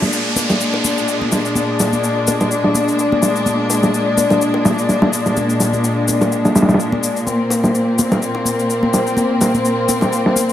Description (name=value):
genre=breakbeat, breaks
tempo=126 BPM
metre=4/4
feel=swing 55% on 16ths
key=unclear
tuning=A4 = 440 Hz
part: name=rich symphonic string section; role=sustained chords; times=0.0-10.5 s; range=Bb2 to D4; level=-16 LUFS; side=left 1 dB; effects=vintage 12-bit sampler grit
part: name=dusty soul sampler-style drum kit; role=drums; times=0.0-10.5 s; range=hi-hat, snare drum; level=-17 LUFS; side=equal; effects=low-pass filter on kick, studio reverb, low-pass filter on hats, low-pass filter on snare
part: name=shaker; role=drums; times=0.0-10.5 s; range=none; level=-24 LUFS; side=left 5 dB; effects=studio reverb
part: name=congas and bongos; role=percussion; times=0.0-10.5 s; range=none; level=-24 LUFS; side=equal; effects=none
part: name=downlifter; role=sound effects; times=0.0-3.5 s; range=none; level=-24 LUFS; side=right 2 dB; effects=none
room=moderate plate reverb, RT60 1.3 s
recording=none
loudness=-14 LUFS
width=side -11 dB against mid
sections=0.0-10.5 A section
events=none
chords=0.0 Bb7